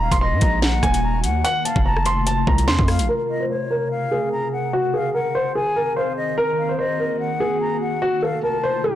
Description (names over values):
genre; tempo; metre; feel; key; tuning
hip hop, drill; 146 BPM; 4/4; half-time; Bb minor; A4 = 439 Hz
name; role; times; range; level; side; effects
dark baby grand piano; melody; 0.0-9.0 s; Gb4 to C6; -22 LUFS; equal; low-pass filter
silver concert flute; second line; 0.0-8.8 s; Db5 to Bb5; -27 LUFS; left 3 dB; digital delay
ethereal airy pad; sustained chords; 0.0-9.0 s; C3 to Bb4; -28 LUFS; equal; ensemble chorus, built-in reverb, phaser, low-pass filter
distorted 808-style bass; bass; 0.0-3.1 s; Eb1 to Bb2; -21 LUFS; equal; distortion
drill drum kit; drums; 0.1-3.1 s; hi-hat, kick drum, rim click, snare drum; -21 LUFS; equal; none
room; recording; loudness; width
light reverb, digital ambience; blown-out, overdriven recording, overdrive, tape stop, faint mains hum; -18 LUFS; side -12 dB against mid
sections
0.0-3.1 A section; 3.1-9.0 B section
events
filter sweep 3.1-9.0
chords
0.0 Ebm; 1.4 F; 3.1 Bbmadd9; 4.7 Ab; 6.4 Ebm; 8.0 F